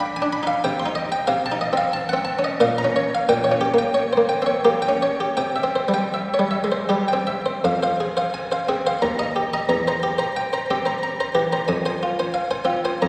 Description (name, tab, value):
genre	classical, baroque-style suite movement for harpsichord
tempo	78-93 BPM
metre	3/4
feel	rubato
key	F minor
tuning	A4 = 442 Hz
part	buff-stop harpsichord	solo	0.0-13.1 s	Eb2 to C6	-22 LUFS	equal	none
room	wet concert hall reverb, RT60 1.9 s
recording	recorded in a church or concert hall, studio ambience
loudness	-22 LUFS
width	mono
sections	0.0-7.6 A section; 7.6-13.1 A section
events	none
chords	0.0 G7 (rootless); 0.6 Cm; 1.3 F7/C; 2.6 Bbm; 3.3 Gdim/Bb; 5.4 C; 7.6 Fm; 9.0 Eb; 9.7 C7/E; 11.7 Fm